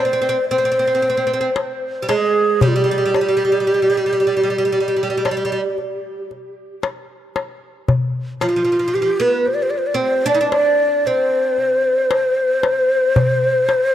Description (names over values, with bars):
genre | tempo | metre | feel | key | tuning
Arabic maqam ensemble | 114 BPM (eighths) | 10/8 | straight | C maqam suznak | A4 = 437 Hz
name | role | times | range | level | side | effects
breathy mellow ney | melody | 0.0-13.9 s | F4 to D5 | -16 LUFS | equal | tape echo
oud | second line | 0.0-13.9 s | F3 to E4-50c | -22 LUFS | right 4 dB | none
darbuka | percussion | 0.5-13.9 s | none | -19 LUFS | left 3 dB | none
room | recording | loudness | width
moderate plate reverb, RT60 2.5 s | echo-heavy mix | -15 LUFS | side -11 dB against mid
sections
0.0-13.9 A section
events
none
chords
none